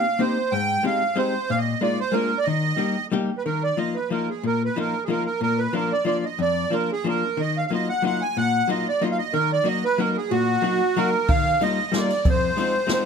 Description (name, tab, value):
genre	musette waltz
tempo	184 BPM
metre	3/4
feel	straight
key	Eb major, Eb harmonic minor from 3.4 s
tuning	A4 = 438 Hz
part	accordion	melody	0.0-13.1 s	Gb4 to Ab5	-23 LUFS	right 3 dB	light tremolo tuning
part	archtop guitar, miked and amplified	accompaniment	0.0-13.1 s	F2 to G4	-24 LUFS	left 4 dB	none
part	jazz brush drum kit	drums	11.3-13.0 s	kick drum, ride cymbal, snare drum	-24 LUFS	right 1 dB	none
room	light reverb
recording	close, detailed microphones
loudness	-20 LUFS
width	side -6 dB against mid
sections	0.0-3.4 A section; 3.4-11.3 B section; 11.3-13.1 A section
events	none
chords	0.0 Cm7; 0.5 Abmaj7; 1.5 Bb7sus4; 2.1 Bb7; 2.5 Eb; 3.4 Ebsus2; 5.4 Bb; 7.4 Ebmadd9; 9.3 Ebm; 11.3 Ebadd9; 12.3 Fm7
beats	0.19 | 0.52 0.84 1.17 | 1.49 1.81 2.13 | 2.46 2.79 3.11 | 3.44 3.77 4.10 | 4.43 4.76 5.09 | 5.42 5.74 6.07 | 6.40 6.73 7.06 | 7.39 7.72 8.04 | 8.37 8.69 9.02 | 9.34 9.66 9.99 | 10.31 10.64 10.97 | 11.29 11.62 11.94 | 12.26 12.58 12.90